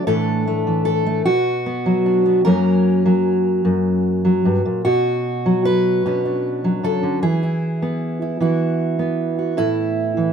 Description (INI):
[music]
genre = folk, solo fingerstyle acoustic guitar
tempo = 51 BPM (dotted quarters)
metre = 6/8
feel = rubato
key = B minor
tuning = A4 = 440 Hz
[part]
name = fingerpicked steel-string acoustic guitar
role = solo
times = 0.0-10.3 s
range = F#2 to B4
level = -16 LUFS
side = equal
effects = none
[sound]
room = light reverb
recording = minimal, uncompressed stereo recording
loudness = -16 LUFS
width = side -7 dB against mid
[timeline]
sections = 0.0-4.9 A section; 4.9-10.3 B section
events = none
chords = 0.1 Asus4; 1.3 Bm; 2.4 F#; 4.9 Bmadd9; 7.2 Eadd9; 9.6 A5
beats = | 0.07 1.25 | 2.45 3.65 | 4.86 6.05 | 7.23 8.41 | 9.58